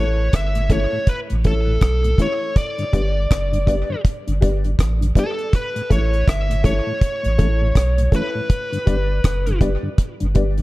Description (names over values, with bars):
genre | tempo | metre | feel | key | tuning
roots reggae | 81 BPM | 4/4 | swing 60% on 16ths | A mixolydian | A4 = 440 Hz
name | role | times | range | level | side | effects
smooth overdriven lead guitar | melody | 0.0-9.6 s | A4 to E5 | -25 LUFS | equal | tape echo
mellow tonewheel organ | accompaniment | 0.0-10.6 s | G2 to D4 | -28 LUFS | left 1 dB | chorus vibrato, slow rotary speaker
dark upright piano | stabs | 0.0-10.6 s | E4 to D5 | -29 LUFS | left 4 dB | none
warm sub bass | bass | 0.0-10.6 s | F#1 to B1 | -20 LUFS | equal | none
deep reggae drum kit | drums | 0.3-10.6 s | hi-hat, kick drum, rim click | -17 LUFS | equal | none
room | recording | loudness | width
light reverb, studio ambience | dark, warm production | -17 LUFS | side -19 dB against mid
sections
0.0-10.6 A section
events
none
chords
0.0 A; 2.6 G; 5.5 A; 8.5 G